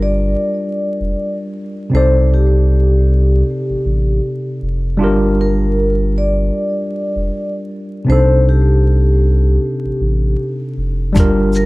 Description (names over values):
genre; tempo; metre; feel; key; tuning
lo-fi hip hop; 78 BPM; 4/4; swing 60% on 16ths; C dorian; A4 = 440 Hz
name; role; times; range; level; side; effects
vibraphone with medium mallets; melody; 0.0-11.7 s; G4 to D5; -20 LUFS; left 1 dB; none
tine electric piano; accompaniment; 0.0-11.7 s; C3 to D5; -18 LUFS; equal; overdrive, fast stereo tremolo, cassette tape
saturated sub bass; bass; 0.0-11.7 s; F1 to C2; -14 LUFS; equal; none
dusty soul sampler-style drum kit; drums; 11.2-11.7 s; hi-hat, kick drum, shaker; -13 LUFS; equal; none
tube shaker; percussion; 11.2-11.7 s; none; -39 LUFS; right 6 dB; none
room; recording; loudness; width
little or no reverb; vinyl crackle; -13 LUFS; side -21 dB against mid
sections
0.0-11.7 A section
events
none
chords
0.0 Gm7; 1.9 Cm69; 5.0 Gm7; 8.1 Cm69